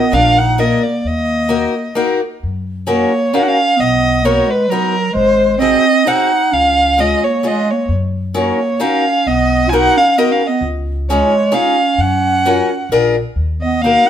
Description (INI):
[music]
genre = musette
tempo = 132 BPM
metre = 3/4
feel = straight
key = F# major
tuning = A4 = 444 Hz
[part]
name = dark violin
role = melody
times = 0.0-14.1 s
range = A#4 to G#5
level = -14 LUFS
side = equal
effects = none
[part]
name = warm clarinet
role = second line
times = 0.0-14.1 s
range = F#3 to E#4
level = -18 LUFS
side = right 4 dB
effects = none
[part]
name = picked steel-string acoustic guitar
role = accompaniment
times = 0.0-14.1 s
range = G#3 to Bb4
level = -17 LUFS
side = left 3 dB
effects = none
[part]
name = upright bass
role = bass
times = 0.1-14.0 s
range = G#1 to F#2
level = -20 LUFS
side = left 1 dB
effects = none
[sound]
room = moderate stone room reverb, RT60 1.0 s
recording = band playing live in one room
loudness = -12 LUFS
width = side -10 dB against mid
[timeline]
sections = 0.0-2.4 A section; 2.4-13.4 B section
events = none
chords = 0.1 Bb; 1.0 Ebm; 2.4 F#6; 3.8 Bmaj7; 5.2 G#7; 6.5 C#; 7.9 F#6; 9.3 Bmaj7; 10.6 C#add9; 12.0 F#maj7; 12.9 A#7; 13.4 Ebm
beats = 0.12 0.57 | 1.03 1.49 1.96 | 2.42 2.88 3.34 | 3.79 4.25 4.70 | 5.16 5.61 6.06 | 6.52 6.97 7.44 | 7.90 8.36 8.82 | 9.27 9.72 10.18 | 10.63 11.08 11.53 | 11.99 12.44 12.90 | 13.37 13.82